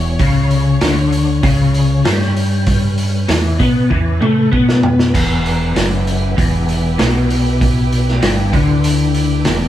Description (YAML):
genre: psychedelic rock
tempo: 97 BPM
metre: 4/4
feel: straight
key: E dorian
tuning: A4 = 440 Hz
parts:
  - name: warm studio string section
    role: sustained chords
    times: 0.0-9.7 s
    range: C#4 to C#5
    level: -26 LUFS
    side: right 4 dB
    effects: none
  - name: electric guitar through a small old amp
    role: riff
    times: 0.0-9.7 s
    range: E2 to B3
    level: -15 LUFS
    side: left 3 dB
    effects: rotary speaker
  - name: fingered electric bass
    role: bass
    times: 0.0-9.7 s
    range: E1 to B2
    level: -18 LUFS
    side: right 1 dB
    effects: none
  - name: vintage drum kit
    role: drums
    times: 0.2-9.6 s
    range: crash cymbal, hi-hat, kick drum, snare drum, toms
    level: -18 LUFS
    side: right 1 dB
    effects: none
room: light reverb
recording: band playing live in one room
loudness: -12 LUFS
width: side -12 dB against mid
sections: 0.0-9.7 A section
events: drum fill 3.9-5.1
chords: 0.2 C#m7b5; 5.1 Em